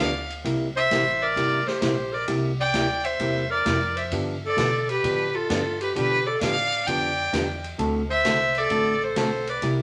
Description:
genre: country, western swing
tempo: 131 BPM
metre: 4/4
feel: swing 67% on 8ths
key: G mixolydian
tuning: A4 = 440 Hz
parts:
  - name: clear fiddle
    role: melody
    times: 0.0-9.6 s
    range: A4 to G5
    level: -27 LUFS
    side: equal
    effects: none
  - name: clear clarinet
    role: second line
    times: 0.0-9.6 s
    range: F4 to D5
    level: -30 LUFS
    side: equal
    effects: none
  - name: hollow-body jazz guitar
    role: accompaniment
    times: 0.0-9.8 s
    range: C3 to A4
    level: -30 LUFS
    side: equal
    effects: none
  - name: upright bass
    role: bass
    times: 0.0-9.8 s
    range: G1 to B2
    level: -36 LUFS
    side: equal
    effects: none
  - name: swinging big-band drum kit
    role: drums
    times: 0.3-9.8 s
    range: hi-hat, kick drum, ride cymbal, snare drum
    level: -35 LUFS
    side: equal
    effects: none
room: wet studio reverb, RT60 0.6 s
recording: none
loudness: -24 LUFS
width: mono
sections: 0.0-9.8 A section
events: none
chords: 0.4 C9; 4.1 G9; 7.8 D9

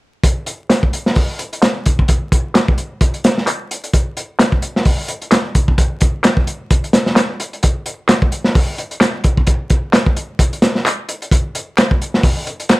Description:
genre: breakbeat, breaks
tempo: 130 BPM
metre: 4/4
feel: swing 56% on 16ths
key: none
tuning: none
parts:
  - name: crunchy breakbeat drum kit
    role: drums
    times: 0.2-12.8 s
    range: hi-hat, kick drum, snare drum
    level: -13 LUFS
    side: equal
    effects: none
  - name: electronic handclaps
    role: drums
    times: 0.7-12.8 s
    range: none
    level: -19 LUFS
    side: equal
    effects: low-pass filter on snare
room: little or no reverb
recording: vinyl crackle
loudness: -14 LUFS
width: side -20 dB against mid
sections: 0.2-12.8 A section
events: filter sweep on drum 0.2-12.8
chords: none

